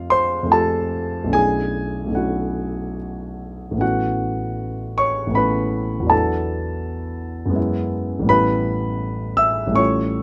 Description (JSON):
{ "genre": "classical, impressionist solo piano", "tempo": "72-84 BPM", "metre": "3/4", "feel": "rubato", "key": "A major", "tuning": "A4 = 439 Hz", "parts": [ { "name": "warm concert grand piano", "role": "solo", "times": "0.0-10.2 s", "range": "A1 to E6", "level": "-21 LUFS", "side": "equal", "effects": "none" } ], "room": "little or no reverb", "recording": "close, detailed microphones", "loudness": "-21 LUFS", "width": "mono", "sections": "0.0-10.2 A section", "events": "none", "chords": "0.0 Fadd9; 1.4 Bm11; 3.8 A69; 6.1 E9sus4; 7.6 F#m11; 8.3 A9" }